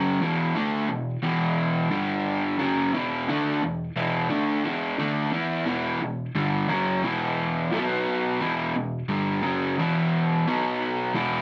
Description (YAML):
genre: rock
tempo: 88 BPM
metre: 4/4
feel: straight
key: E minor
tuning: A4 = 440 Hz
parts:
  - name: raw garage guitar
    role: solo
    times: 0.0-11.4 s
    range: E2 to E4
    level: -25 LUFS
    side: equal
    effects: overdrive
room: moderate studio ambience, RT60 0.5 s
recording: none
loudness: -26 LUFS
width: mono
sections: 0.0-5.7 A section; 5.7-11.4 B section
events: none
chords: 0.0 E5; 1.9 G5; 2.6 E5; 5.7 Em; 7.7 B5; 8.4 Em; 10.4 B5